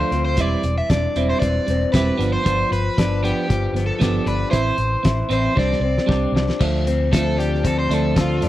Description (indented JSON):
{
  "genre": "indie rock",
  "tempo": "116 BPM",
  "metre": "4/4",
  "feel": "straight",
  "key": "D dorian",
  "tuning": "A4 = 440 Hz",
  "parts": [
    { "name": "overdriven semi-hollow guitar", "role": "melody", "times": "0.0-8.5 s", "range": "F4 to E5", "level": "-24 LUFS", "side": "equal", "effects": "spring reverb, slapback echo" },
    { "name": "crunchy overdriven guitar", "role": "riff", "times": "0.0-8.5 s", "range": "E3 to E4", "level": "-25 LUFS", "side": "right 6 dB", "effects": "analog chorus, slapback echo" },
    { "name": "electric guitar through a small old amp", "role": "riff", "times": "0.0-8.5 s", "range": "E3 to A4", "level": "-25 LUFS", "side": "left 4 dB", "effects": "none" },
    { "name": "picked electric bass", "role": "bass", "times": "0.0-8.5 s", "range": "E1 to F2", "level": "-22 LUFS", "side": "equal", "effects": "none" },
    { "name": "loose indie drum kit", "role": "drums", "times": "0.1-8.5 s", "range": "crash cymbal, hi-hat, kick drum, snare drum", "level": "-21 LUFS", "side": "equal", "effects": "none" }
  ],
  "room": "studio reverb",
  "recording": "dry, close 1970s-style studio recording",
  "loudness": "-17 LUFS",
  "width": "side -14 dB against mid",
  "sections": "0.0-6.6 A section; 6.6-8.5 B section",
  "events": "drum fill 5.6-6.6; overdriven electric guitar solo 6.6-8.5",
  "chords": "0.4 Cadd9/E; 2.2 G7; 4.5 Am; 5.6 Csus2; 6.6 Dm7"
}